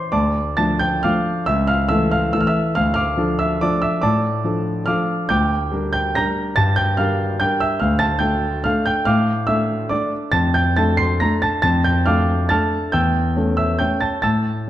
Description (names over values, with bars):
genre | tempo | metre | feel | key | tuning
classical, piano waltz | 126-157 BPM | 3/4 | rubato | D minor | A4 = 440 Hz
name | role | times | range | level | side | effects
warm concert grand piano | solo | 0.0-14.7 s | C#2 to C7 | -16 LUFS | equal | none
room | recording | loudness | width
wet recital hall reverb, RT60 1.5 s | dark, warm production | -16 LUFS | side -12 dB against mid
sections
0.1-14.7 A section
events
none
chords
0.1 Dm; 1.5 A/C#; 2.7 Dm; 5.3 Gm/D; 7.8 Dm; 10.3 Dm/F; 12.9 A7/E